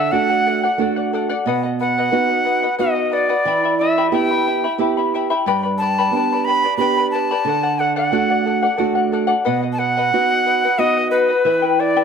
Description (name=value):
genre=andean folk, Andean ensemble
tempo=90 BPM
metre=3/4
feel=straight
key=unclear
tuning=A4 = 438 Hz
part: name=bright reedy quena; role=melody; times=0.0-12.0 s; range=B4 to B5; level=-18 LUFS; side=equal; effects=tape echo
part: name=charango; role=accompaniment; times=0.0-12.0 s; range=E4 to B5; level=-21 LUFS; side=left 6 dB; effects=none
part: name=nylon-string guitar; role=accompaniment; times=0.0-12.0 s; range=G2 to G4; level=-21 LUFS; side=right 6 dB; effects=none
room=wet spring reverb, RT60 1.7 s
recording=heard from further back in the room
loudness=-15 LUFS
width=side -6 dB against mid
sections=0.0-12.0 A section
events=none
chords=0.0 D; 1.5 B; 3.5 Em; 5.5 G; 7.5 D; 9.5 B; 11.5 Em